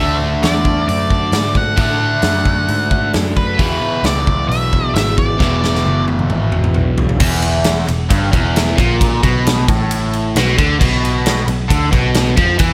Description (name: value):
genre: blues rock power trio and southern rock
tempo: 133 BPM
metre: 4/4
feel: straight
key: E mixolydian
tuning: A4 = 440 Hz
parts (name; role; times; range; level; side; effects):
- octave-fuzz lead guitar; melody; 0.0-6.0 s; B4 to F#5; -22 LUFS; equal; distortion
- raw garage guitar; riff; 0.0-12.7 s; E2 to D4; -20 LUFS; equal; overdrive, phaser
- vintage muted picked electric bass; bass; 0.0-12.7 s; E1 to A2; -21 LUFS; equal; none
- big rock drum kit; drums; 0.4-12.7 s; crash cymbal, hi-hat, kick drum, ride cymbal, snare drum, toms; -19 LUFS; equal; none
room: small room ambience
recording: none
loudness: -15 LUFS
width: mono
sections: 0.0-7.2 A section; 7.2-12.7 B section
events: drum fill 5.4-7.2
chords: 0.0 D; 3.6 E; 7.2 E5; 10.8 Asus4 (rootless)